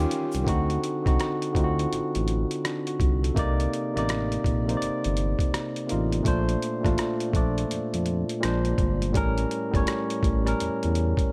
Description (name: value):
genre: R&B, neo-soul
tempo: 83 BPM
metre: 4/4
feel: swing 62% on 16ths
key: unclear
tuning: A4 = 439 Hz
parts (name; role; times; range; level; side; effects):
- barky tine electric piano; accompaniment; 0.0-11.3 s; A2 to D5; -29 LUFS; equal; overdrive
- warm studio string section; sustained chords; 0.0-0.5 s; Eb3 to F4; -44 LUFS; equal; none
- smooth synth bass; bass; 0.0-11.1 s; G1 to F2; -29 LUFS; equal; none
- boom bap sampler-style drum kit; drums; 0.1-11.3 s; hi-hat, kick drum, rim click; -30 LUFS; equal; none
room: studio reverb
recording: none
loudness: -26 LUFS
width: mono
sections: 0.5-11.3 A section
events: none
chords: 0.5 D7b9; 3.4 Cm9; 6.2 Bbmaj9; 8.4 Bb9; 9.1 A7b9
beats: | 0.46 1.19 1.91 2.63 | 3.36 4.08 4.80 5.52 | 6.25 6.97 7.69 8.42 | 9.14 9.86 10.58 11.31